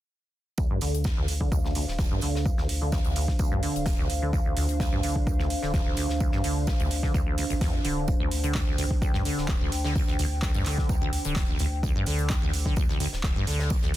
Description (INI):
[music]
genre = acid house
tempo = 128 BPM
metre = 4/4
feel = straight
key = D minor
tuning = A4 = 438 Hz
[part]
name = dark analog pad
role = sustained chords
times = 1.3-14.0 s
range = D4 to G5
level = -34 LUFS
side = right 1 dB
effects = chorus, sidechain pumping
[part]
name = acid bass, saw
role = riff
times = 0.6-13.9 s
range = C2 to D3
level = -30 LUFS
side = equal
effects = tube saturation, wide subtle chorus, sidechain pumping, digital delay
[part]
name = electronic kick drum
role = drums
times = 0.6-13.8 s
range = none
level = -27 LUFS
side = equal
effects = overdrive
[part]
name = gated 80s drum kit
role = drums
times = 0.6-14.0 s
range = hi-hat, snare drum, tambourine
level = -39 LUFS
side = equal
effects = sidechain pumping on hats, high-pass filter on hats, high-pass filter on snare, sidechain pumping on perc, high-pass filter on perc, high-pass filter on room
[part]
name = warm sub bass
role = bass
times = 0.8-14.0 s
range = D1 to D2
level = -30 LUFS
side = equal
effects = sidechain pumping
[part]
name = booming analog drum machine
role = drums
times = 0.8-14.0 s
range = handclaps, hi-hat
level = -35 LUFS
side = right 2 dB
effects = none
[sound]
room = light reverb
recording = dense, heavily limited modern master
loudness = -24 LUFS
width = side -14 dB against mid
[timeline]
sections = 0.6-14.0 A section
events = none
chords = 0.6 Dm7